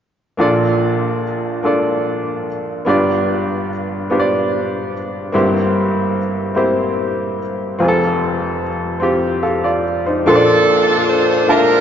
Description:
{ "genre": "gospel", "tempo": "49 BPM (dotted quarters)", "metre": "6/8", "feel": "straight", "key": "Bb major", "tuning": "A4 = 437 Hz", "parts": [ { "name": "clear upright piano", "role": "accompaniment", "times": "0.4-11.8 s", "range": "F1 to A5", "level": "-15 LUFS", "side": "equal", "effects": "none" }, { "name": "edgy saxophone section", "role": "melody", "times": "10.3-11.8 s", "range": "D4 to C5", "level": "-13 LUFS", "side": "right 1 dB", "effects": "none" } ], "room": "wet cathedral reverb, RT60 4.9 s", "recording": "recorded in a church or concert hall, nothing above 7.5 kHz", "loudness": "-14 LUFS", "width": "side -8 dB against mid", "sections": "0.4-10.3 A section; 10.3-11.8 B section", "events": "none", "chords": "0.4 Bbmaj7; 2.9 G7; 5.3 C7/G; 7.8 F; 10.3 Bbmaj7" }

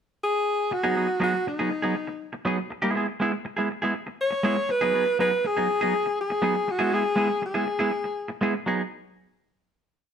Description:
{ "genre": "disco", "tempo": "121 BPM", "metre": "4/4", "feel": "straight", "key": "G# minor", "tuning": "A4 = 439 Hz", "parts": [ { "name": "warm alto saxophone", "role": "melody", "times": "0.2-8.4 s", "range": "D#4 to C#5", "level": "-24 LUFS", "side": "left 1 dB", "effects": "none" }, { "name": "clean electric guitar", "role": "accompaniment", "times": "0.7-8.8 s", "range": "F#3 to G#4", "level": "-26 LUFS", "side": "right 2 dB", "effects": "none" } ], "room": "moderate studio reverb, RT60 0.9 s", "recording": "band playing live in one room", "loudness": "-23 LUFS", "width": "side -8 dB against mid", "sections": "0.0-0.7 pickup bar; 0.7-8.7 groove; 8.7-10.1 final chord", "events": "none", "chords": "0.0 N.C.; 0.7 G#m7; 2.7 C#m7; 4.7 G#m7; 6.7 E/G#; 8.7 G#m7" }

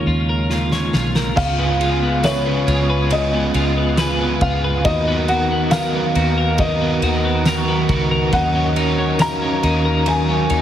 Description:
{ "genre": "dream pop", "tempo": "69 BPM", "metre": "4/4", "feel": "straight", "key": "unclear", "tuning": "A4 = 441 Hz", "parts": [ { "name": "felt-muted upright piano", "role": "melody", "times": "0.0-10.6 s", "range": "Db5 to Bb5", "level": "-22 LUFS", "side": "left 1 dB", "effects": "digital delay" }, { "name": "percussive tonewheel organ", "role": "sustained chords", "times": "0.0-10.6 s", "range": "Db3 to A#4", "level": "-24 LUFS", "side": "right 1 dB", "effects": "fast rotary speaker" }, { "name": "twelve-string electric guitar", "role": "arpeggios", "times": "0.0-10.6 s", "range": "Db3 to Cb5", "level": "-21 LUFS", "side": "left 1 dB", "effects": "lush chorus, digital delay" }, { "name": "vintage muted fingered electric bass", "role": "bass", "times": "0.0-10.6 s", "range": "Cb2 to Eb2", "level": "-22 LUFS", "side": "equal", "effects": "none" }, { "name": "loose indie drum kit", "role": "drums", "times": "0.5-10.6 s", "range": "crash cymbal, kick drum, ride cymbal, snare drum, tambourine", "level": "-25 LUFS", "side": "equal", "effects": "none" }, { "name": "crunchy overdriven guitar", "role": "accompaniment", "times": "1.4-10.6 s", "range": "Db3 to A#4", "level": "-24 LUFS", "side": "right 2 dB", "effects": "tremolo, analog chorus" }, { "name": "vibraphone with medium hard mallets", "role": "texture", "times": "1.4-10.6 s", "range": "Eb5 to Db6", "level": "-31 LUFS", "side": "right 2 dB", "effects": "digital delay" } ], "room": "moderate scoring stage reverb, RT60 1.9 s, small room ambience", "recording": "heavily compressed radio sound, multiband compression", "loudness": "-15 LUFS", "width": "side -10 dB against mid", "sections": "0.0-1.4 A section; 1.4-10.6 B section", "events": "drum fill 0.5-1.4", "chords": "0.0 Bbm7/Eb; 1.4 Db7; 4.8 Bmaj7/D#; 8.3 Ebm7" }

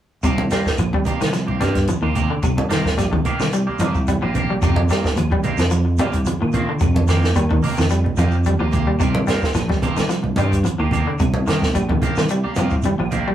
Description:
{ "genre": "afrobeat", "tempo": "110 BPM", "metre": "4/4", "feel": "swing 54% on 16ths", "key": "C minor", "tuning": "A4 = 439 Hz", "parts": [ { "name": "electric guitar at the edge of break-up", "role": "arpeggios", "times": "0.2-13.3 s", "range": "C3 to G3", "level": "-23 LUFS", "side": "left 1 dB", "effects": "slapback echo" }, { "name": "electric guitar at the edge of break-up", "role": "stabs", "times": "0.2-13.3 s", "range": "Eb3 to G4", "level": "-26 LUFS", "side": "right 3 dB", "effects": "phaser" }, { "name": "fingered electric bass", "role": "bass", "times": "0.2-13.3 s", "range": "Bb1 to Bb2", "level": "-20 LUFS", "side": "equal", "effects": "none" }, { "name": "compact cocktail drum kit", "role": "drums", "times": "0.2-13.3 s", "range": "hi-hat, kick drum, snare drum", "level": "-23 LUFS", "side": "right 1 dB", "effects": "none" }, { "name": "claves", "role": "percussion", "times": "0.2-13.1 s", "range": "none", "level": "-41 LUFS", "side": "equal", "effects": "none" }, { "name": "congas", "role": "percussion", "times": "0.2-13.3 s", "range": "none", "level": "-25 LUFS", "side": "right 2 dB", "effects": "none" }, { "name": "shekere", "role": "percussion", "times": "0.2-13.3 s", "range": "none", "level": "-31 LUFS", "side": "right 2 dB", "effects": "none" } ], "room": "moderate studio ambience, RT60 0.5 s", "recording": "rough rehearsal-room recording, warm saturation, small room ambience", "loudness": "-16 LUFS", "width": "side -11 dB against mid", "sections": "0.2-13.3 A section", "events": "none", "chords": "0.2 Cm7; 4.6 F9sus4; 9.0 Cm7" }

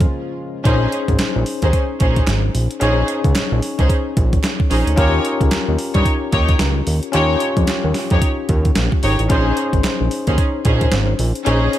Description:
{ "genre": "R&B, new jack swing", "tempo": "111 BPM", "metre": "4/4", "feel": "swing 60% on 16ths", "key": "Bb dorian", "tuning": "A4 = 439 Hz", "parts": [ { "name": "bell-like tine electric piano", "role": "accompaniment", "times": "0.0-11.8 s", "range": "Db4 to Db5", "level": "-22 LUFS", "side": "left 4 dB", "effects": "medium stereo tremolo" }, { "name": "chorused pulse-width pad", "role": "sustained chords", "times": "0.0-0.6 s", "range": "Db3 to F4", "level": "-32 LUFS", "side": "right 2 dB", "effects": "none" }, { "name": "fat analog bass", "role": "bass", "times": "0.0-11.7 s", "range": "Ab1 to G2", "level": "-18 LUFS", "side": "right 1 dB", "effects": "none" }, { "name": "crisp 8-bit digital drum machine", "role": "drums", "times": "0.0-11.8 s", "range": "hi-hat, kick drum, snare drum", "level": "-18 LUFS", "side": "right 1 dB", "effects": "overdrive" }, { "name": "warm symphonic string section", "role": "stabs", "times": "0.6-11.7 s", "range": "Db4 to Db5", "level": "-23 LUFS", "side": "right 1 dB", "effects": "none" }, { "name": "group handclap", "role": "percussion", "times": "1.2-11.1 s", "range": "none", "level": "-32 LUFS", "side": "right 7 dB", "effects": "none" } ], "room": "little or no reverb", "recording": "none", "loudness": "-15 LUFS", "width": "side -12 dB against mid", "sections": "0.7-11.8 A section", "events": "break 0.1-0.7", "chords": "0.0 Bbm7; 0.7 Bbm11; 5.0 Eb7; 9.3 Bbm11" }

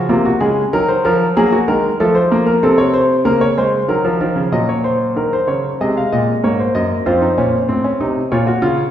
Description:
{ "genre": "classical, baroque-style 3-part fugue for grand piano", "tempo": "95 BPM", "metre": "4/4", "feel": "straight", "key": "unclear", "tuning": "A4 = 439 Hz", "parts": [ { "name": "warm concert grand piano", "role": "solo", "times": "0.0-8.9 s", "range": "F2 to F5", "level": "-13 LUFS", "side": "equal", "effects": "none" } ], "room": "wet recital hall reverb, RT60 1.5 s", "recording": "recorded in a church or concert hall", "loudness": "-13 LUFS", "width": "side -10 dB against mid", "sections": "0.0-4.5 A section; 4.5-8.9 B section", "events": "none", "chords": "0.0 Bbm; 0.7 Cm7b5/Eb; 2.0 F; 3.3 Bbm/Db; 4.5 Gb/Bb; 5.8 Cdim; 7.1 F; 8.3 Bbm" }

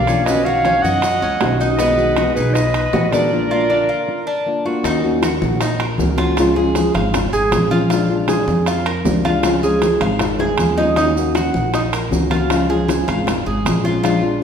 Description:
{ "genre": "latin, Cuban son and guajira", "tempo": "157 BPM", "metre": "4/4", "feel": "straight", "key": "Eb minor", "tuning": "A4 = 439 Hz", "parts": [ { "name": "clear clarinet", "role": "melody", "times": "0.0-4.4 s", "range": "Cb5 to F#5", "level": "-19 LUFS", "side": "equal", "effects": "none" }, { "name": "brilliant trumpet", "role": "second line", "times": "0.0-4.4 s", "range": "Ab4 to D#5", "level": "-26 LUFS", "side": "right 5 dB", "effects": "none" }, { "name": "nylon-string guitar", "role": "accompaniment", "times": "0.0-14.4 s", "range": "B2 to F#4", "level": "-20 LUFS", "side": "left 2 dB", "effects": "none" }, { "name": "Cuban tres", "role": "arpeggios", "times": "0.0-14.4 s", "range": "Cb4 to F5", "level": "-21 LUFS", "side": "right 2 dB", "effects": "none" }, { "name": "upright bass", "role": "bass", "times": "0.0-14.4 s", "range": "Ab1 to F#2", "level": "-22 LUFS", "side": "equal", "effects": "none" }, { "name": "congas", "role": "percussion", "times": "0.1-14.4 s", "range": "none", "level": "-25 LUFS", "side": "equal", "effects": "none" }, { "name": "maracas", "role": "percussion", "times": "0.1-14.2 s", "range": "none", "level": "-35 LUFS", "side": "right 4 dB", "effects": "none" }, { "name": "timbales", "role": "percussion", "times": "0.1-14.2 s", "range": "none", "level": "-26 LUFS", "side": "right 4 dB", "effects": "none" }, { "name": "bongos", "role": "percussion", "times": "0.3-14.2 s", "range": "none", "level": "-25 LUFS", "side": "left 4 dB", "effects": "none" } ], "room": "wet recital hall reverb, RT60 1.6 s", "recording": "recorded in a church or concert hall", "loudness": "-14 LUFS", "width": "side -7 dB against mid", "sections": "0.0-4.8 A section; 4.8-14.4 B section", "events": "break 3.3-4.8; drum fill 10.4-11.0", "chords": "0.3 Badd9; 1.8 Abm7/Cb; 3.3 Bb; 4.8 Ebm7; 6.4 Db; 7.9 Bb7; 9.4 Db; 11.0 Ebm7; 12.5 Db" }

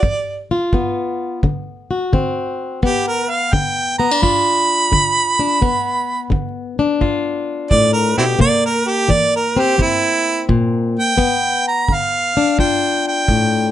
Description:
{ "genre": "acoustic country blues, solo or duo", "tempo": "86 BPM", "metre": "4/4", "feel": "swing 68% on 8ths", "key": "G mixolydian", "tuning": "A4 = 440 Hz", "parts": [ { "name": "bright harmonica", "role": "melody", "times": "0.0-13.7 s", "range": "C4 to B5", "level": "-16 LUFS", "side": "right 2 dB", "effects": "none" }, { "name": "fingerpicked plugged-in swing-style acoustic guitar", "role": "accompaniment", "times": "0.0-13.7 s", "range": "G2 to F#4", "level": "-18 LUFS", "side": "left 3 dB", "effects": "none" }, { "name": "kick drum", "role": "drums", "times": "0.0-13.5 s", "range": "none", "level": "-21 LUFS", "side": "right 1 dB", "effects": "none" } ], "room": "moderate small room reverb, RT60 0.5 s", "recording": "nothing above 11.0 kHz", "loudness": "-14 LUFS", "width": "side -12 dB against mid", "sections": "0.0-2.8 A section; 2.8-13.7 B section", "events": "harmonica solo 2.8-13.7", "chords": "0.0 G7; 1.4 D7; 2.8 G7; 8.4 C7; 11.2 G7" }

